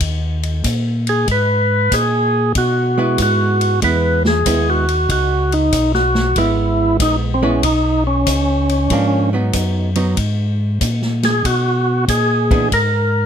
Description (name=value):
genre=soul jazz organ trio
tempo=94 BPM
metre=4/4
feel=swing 67% on 8ths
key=unclear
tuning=A4 = 440 Hz
part: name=mellow tonewheel organ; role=bass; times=0.0-13.3 s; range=G#1 to B2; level=-18 LUFS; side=equal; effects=slow rotary speaker
part: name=swinging big-band drum kit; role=drums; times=0.0-12.9 s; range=hi-hat, kick drum, ride cymbal, snare drum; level=-23 LUFS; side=left 1 dB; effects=none
part: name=percussive tonewheel organ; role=melody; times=1.1-13.3 s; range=B#3 to B4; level=-16 LUFS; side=equal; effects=slow rotary speaker
part: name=archtop guitar, miked and amplified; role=accompaniment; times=3.0-12.7 s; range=E3 to G#4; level=-21 LUFS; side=right 5 dB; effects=none
room=little or no reverb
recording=close, detailed microphones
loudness=-14 LUFS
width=side -8 dB against mid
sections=0.0-13.3 A section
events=none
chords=0.0 G#5; 1.3 C#m7; 8.9 G#m7; 11.4 E (rootless)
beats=0.01 0.65 | 1.29 1.92 2.56 3.19 | 3.83 4.46 5.10 5.73 | 6.37 7.00 7.64 8.28 | 8.91 9.54 10.18 10.81 | 11.45 12.09 12.72